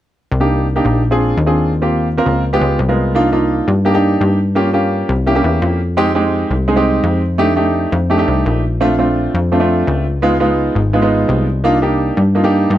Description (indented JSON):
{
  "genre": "Afro-Cuban jazz",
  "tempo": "170 BPM",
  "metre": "4/4",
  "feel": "straight",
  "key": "C minor",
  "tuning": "A4 = 441 Hz",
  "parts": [
    { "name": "plucky analog bass", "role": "bass", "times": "0.3-12.8 s", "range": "Ab1 to G2", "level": "-16 LUFS", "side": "left 1 dB", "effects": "none" },
    { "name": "clear grand piano", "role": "accompaniment", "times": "0.4-12.8 s", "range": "Ab3 to Bb4", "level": "-14 LUFS", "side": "right 1 dB", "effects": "none" }
  ],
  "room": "light reverb",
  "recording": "none",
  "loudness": "-12 LUFS",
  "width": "side -12 dB against mid",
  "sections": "0.3-3.1 A section; 3.1-12.8 B section",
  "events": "none",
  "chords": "0.3 Cm9; 1.0 Bb7; 1.7 Eb69; 2.4 Db7#11; 3.1 Cm11; 4.6 Gm7b5; 5.3 C7b9; 6.0 Fm9; 7.4 F13; 8.8 Bbmaj9; 10.2 Db9; 11.6 Cm11",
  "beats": "| 0.32 0.68 1.03 1.38 | 1.74 2.09 2.44 2.79 | 3.15 3.50 3.85 4.21 | 4.56 4.92 5.27 5.62 | 5.98 6.33 6.68 7.04 | 7.39 7.75 8.10 8.46 | 8.81 9.16 9.52 9.87 | 10.23 10.58 10.94 11.29 | 11.64 12.00 12.35 12.71"
}